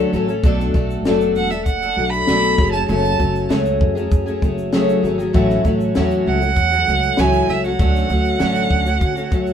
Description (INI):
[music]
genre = acoustic pop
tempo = 98 BPM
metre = 4/4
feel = straight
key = A major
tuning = A4 = 438 Hz
[part]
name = warm violin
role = melody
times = 0.0-9.5 s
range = E5 to B5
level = -20 LUFS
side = right 6 dB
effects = none
[part]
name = fingerpicked twelve-string acoustic guitar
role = accompaniment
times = 0.0-9.5 s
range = F#2 to A4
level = -19 LUFS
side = left 2 dB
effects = none
[part]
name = upright bass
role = bass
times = 0.1-9.5 s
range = E1 to D3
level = -22 LUFS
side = right 1 dB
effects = none
[part]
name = compact cocktail drum kit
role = drums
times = 0.1-9.5 s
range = kick drum, shaker, snare drum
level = -20 LUFS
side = equal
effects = none
[sound]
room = light reverb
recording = minimal, uncompressed stereo recording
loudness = -15 LUFS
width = side -8 dB against mid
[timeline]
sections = 0.0-9.5 A section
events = none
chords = 0.4 Bm7; 2.6 F#madd9; 5.3 A6; 7.8 Dmaj7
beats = | 0.43 1.05 1.66 2.28 | 2.89 3.50 4.12 4.73 | 5.34 5.96 6.57 7.18 | 7.79 8.40 9.01